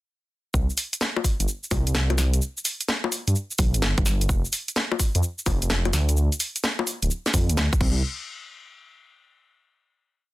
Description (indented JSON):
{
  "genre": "UK garage, two-step garage",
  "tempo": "128 BPM",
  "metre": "4/4",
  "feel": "swing 66% on 16ths",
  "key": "unclear",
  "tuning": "A4 = 440 Hz",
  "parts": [
    { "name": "dark detuned saw bass", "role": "bass", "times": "0.5-8.0 s", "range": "D1 to G2", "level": "-22 LUFS", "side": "equal", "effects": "none" },
    { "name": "electronic kick drum", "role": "drums", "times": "0.5-7.9 s", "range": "none", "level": "-23 LUFS", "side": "equal", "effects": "small room ambience" },
    { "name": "garage drum kit", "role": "drums", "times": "0.5-7.9 s", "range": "bongos, cabasa, crash cymbal, hi-hat, snare drum", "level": "-26 LUFS", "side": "left 1 dB", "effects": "small room ambience, soft clipping on snare" }
  ],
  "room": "light reverb",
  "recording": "dense, heavily limited modern master",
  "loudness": "-22 LUFS",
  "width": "side -18 dB against mid",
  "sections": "0.5-8.0 drop; 8.0-9.9 final hit",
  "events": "drop 0.5-8.0",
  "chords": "none",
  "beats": "| 0.54 1.01 1.48 1.95 | 2.42 2.88 3.35 3.82 | 4.29 4.76 5.23 5.70 | 6.17 6.63 7.10 7.57"
}